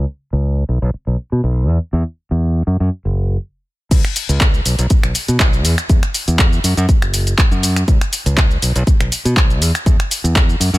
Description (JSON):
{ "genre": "filtered disco house", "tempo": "121 BPM", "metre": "4/4", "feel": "swing 54% on 16ths", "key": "unclear", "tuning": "A4 = 440 Hz", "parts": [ { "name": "modern bright fingered electric bass", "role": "bass", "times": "0.0-10.8 s", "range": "F#1 to B2", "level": "-16 LUFS", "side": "equal", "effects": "sidechain pumping, low-pass filter" }, { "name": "electronic kick drum", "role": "drums", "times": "3.9-10.5 s", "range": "none", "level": "-13 LUFS", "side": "equal", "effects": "none" }, { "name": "punchy analog drum machine", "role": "drums", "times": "3.9-10.8 s", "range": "crash cymbal, finger snaps, handclaps, hi-hat, shaker", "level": "-19 LUFS", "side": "equal", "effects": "sidechain pumping on hats, sidechain pumping on cymbals, sidechain pumping on perc" } ], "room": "little or no reverb", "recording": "none", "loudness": "-13 LUFS", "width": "side -18 dB against mid", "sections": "0.0-3.9 A section; 3.9-10.8 B section", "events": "filter sweep on fingered electric bass 0.0-3.9; stop 3.4-3.9; drop 3.9-10.8", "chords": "none" }